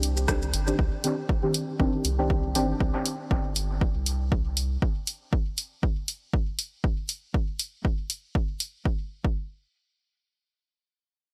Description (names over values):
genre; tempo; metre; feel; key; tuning
dub techno; 119 BPM; 4/4; swing 55% on 16ths; C minor; A4 = 441 Hz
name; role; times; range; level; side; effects
deep mellow chord stab; stabs; 0.0-3.0 s; Eb3 to G4; -31 LUFS; equal; chorus, phaser, sidechain pumping, dub echo
soft dub sub bass; bass; 0.0-4.8 s; G1 to C2; -31 LUFS; equal; sidechain pumping
punchy analog drum machine; drums; 0.0-8.7 s; hi-hat, rim click, shaker; -32 LUFS; equal; none
electronic kick drum; drums; 0.3-9.4 s; none; -28 LUFS; equal; none
room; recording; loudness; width
light reverb; lossy compression artefacts; -28 LUFS; mono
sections
0.8-8.9 A section; 8.9-11.3 B section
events
none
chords
0.0 Cmadd9; 8.9 N.C.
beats
0.28 | 0.79 1.29 1.80 2.30 | 2.80 3.31 3.81 4.32 | 4.82 5.33 5.83 6.33 | 6.84 7.34 7.85 8.35 | 8.86 9.36